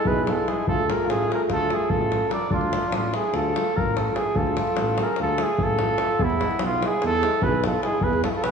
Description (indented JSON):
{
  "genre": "balkan folk, Balkan brass band",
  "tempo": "293 BPM (eighths)",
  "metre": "9/8",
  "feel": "straight",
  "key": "unclear",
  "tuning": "A4 = 440 Hz",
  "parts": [
    { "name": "mellow trumpet", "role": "melody", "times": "0.0-8.5 s", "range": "E4 to D5", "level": "-24 LUFS", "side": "right 1 dB", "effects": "none" },
    { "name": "mellow flugelhorn", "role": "second line", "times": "0.0-8.5 s", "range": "B3 to Bb4", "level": "-30 LUFS", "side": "equal", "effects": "none" },
    { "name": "bright trombone", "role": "accompaniment", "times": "0.0-8.3 s", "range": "G#3 to A3", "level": "-33 LUFS", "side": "right 5 dB", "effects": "none" },
    { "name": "dark euphonium", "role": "accompaniment", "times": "0.0-8.3 s", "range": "E4 to F4", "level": "-34 LUFS", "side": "left 4 dB", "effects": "none" },
    { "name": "mellow tuba", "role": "bass", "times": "0.1-8.5 s", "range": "A1 to E2", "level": "-28 LUFS", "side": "right 1 dB", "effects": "none" },
    { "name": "davul", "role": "percussion", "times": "0.1-8.5 s", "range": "none", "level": "-27 LUFS", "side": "left 2 dB", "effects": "none" }
  ],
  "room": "wet scoring stage reverb, RT60 1.6 s",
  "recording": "heard from further back in the room",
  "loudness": "-20 LUFS",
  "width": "side -6 dB against mid",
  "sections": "0.0-2.5 A section; 2.5-8.5 A section",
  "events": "none",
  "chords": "0.0 E; 0.7 Dm; 6.2 E"
}